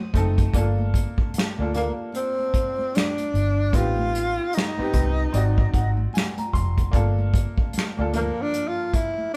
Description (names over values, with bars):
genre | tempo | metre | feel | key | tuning
R&B, neo-soul | 75 BPM | 4/4 | swing 62% on 16ths | unclear | A4 = 440 Hz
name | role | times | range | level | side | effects
breathy tenor saxophone | melody | 0.0-9.4 s | F#3 to F4 | -28 LUFS | equal | none
clear upright piano | accompaniment | 0.0-9.4 s | F3 to C6 | -33 LUFS | equal | none
warm studio string section | sustained chords | 0.0-0.5 s | C5 to Eb6 | -50 LUFS | equal | none
vintage muted fingered electric bass | bass | 0.1-8.3 s | F1 to D2 | -25 LUFS | equal | none
unplugged drum kit | drums | 0.1-9.4 s | finger snaps, hi-hat, kick drum, snare drum | -26 LUFS | equal | none
congas | percussion | 0.1-9.3 s | none | -39 LUFS | equal | none
room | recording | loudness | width
light reverb | band playing live in one room | -23 LUFS | mono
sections
0.5-9.4 A section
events
upright piano fill 5.3-6.9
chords
0.0 D7b9 (rootless); 0.5 Gm9; 3.7 Am7b5; 5.3 Ab7#11; 6.9 Gm9